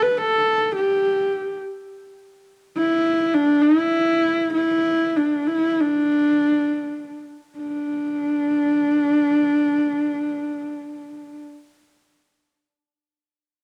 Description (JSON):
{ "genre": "mongolian traditional, Mongolian folk", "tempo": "free time", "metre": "none", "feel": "none", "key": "D zhi mode", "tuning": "A4 = 439 Hz", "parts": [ { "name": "warm horsehead fiddle", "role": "solo", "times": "0.0-11.4 s", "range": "D4 to B4", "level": "-21 LUFS", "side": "equal", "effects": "cassette tape" } ], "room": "light reverb, small room ambience", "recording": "home recording on cassette", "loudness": "-21 LUFS", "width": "mono", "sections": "0.0-7.6 A section; 7.6-10.7 B section", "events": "slowing down 2.5-7.6", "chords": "none" }